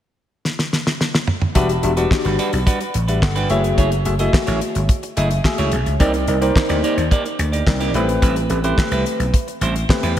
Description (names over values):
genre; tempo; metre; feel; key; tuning
early-eighties boogie funk; 108 BPM; 4/4; straight; E minor; A4 = 445 Hz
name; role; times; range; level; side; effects
damped 70s drum kit; drums; 0.5-10.2 s; handclaps, hi-hat, kick drum, snare drum, toms; -19 LUFS; equal; none
barky tine electric piano; accompaniment; 1.5-10.2 s; A3 to G#5; -21 LUFS; left 2 dB; lush chorus
clean electric guitar; riff; 1.6-10.2 s; G3 to D#5; -24 LUFS; right 3 dB; wide subtle chorus
vintage slap bass; bass; 1.6-10.2 s; E1 to E2; -20 LUFS; equal; none
room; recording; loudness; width
moderate lush hall reverb, RT60 1.7 s, small room ambience; dreamy mix soaked in reverb; -16 LUFS; side -11 dB against mid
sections
0.0-1.6 A section; 1.6-10.2 B section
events
drum fill 0.4-1.6; tine electric piano fill 4.9-6.0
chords
0.0 N.C.; 1.6 Em9; 3.5 F#m9; 6.0 Cm9; 7.9 Am9